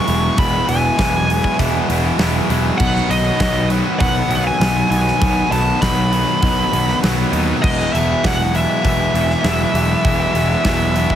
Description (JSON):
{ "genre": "quiet-loud alternative rock", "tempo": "100 BPM", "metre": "4/4", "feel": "straight", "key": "E major", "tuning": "A4 = 440 Hz", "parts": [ { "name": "high-gain lead guitar", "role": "melody", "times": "0.0-11.2 s", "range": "D#5 to C#6", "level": "-20 LUFS", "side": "equal", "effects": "distortion" }, { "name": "distorted electric guitar", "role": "riff", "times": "0.0-11.2 s", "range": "E2 to B3", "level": "-22 LUFS", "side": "right 12 dB", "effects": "overdrive" }, { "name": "thick fuzz guitar", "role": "riff", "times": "0.0-11.2 s", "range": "B2 to E4", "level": "-22 LUFS", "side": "left 12 dB", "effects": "distortion" }, { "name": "fuzz picked electric bass", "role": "bass", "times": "0.1-11.1 s", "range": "E1 to D#2", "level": "-20 LUFS", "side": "equal", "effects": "overdrive" }, { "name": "huge arena drum kit", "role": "drums", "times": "0.1-11.2 s", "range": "crash cymbal, hi-hat, kick drum, snare drum", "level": "-21 LUFS", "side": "right 1 dB", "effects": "none" } ], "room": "little or no reverb", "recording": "heavily compressed radio sound, multiband compression", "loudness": "-14 LUFS", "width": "side -10 dB against mid", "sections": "0.0-11.2 A section", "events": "none", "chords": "0.0 E; 2.8 B; 7.6 E", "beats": "| 0.39 0.99 1.59 2.19 | 2.80 3.40 4.00 4.61 | 5.21 5.81 6.42 7.02 | 7.62 8.23 8.83 9.44 | 10.04 10.64" }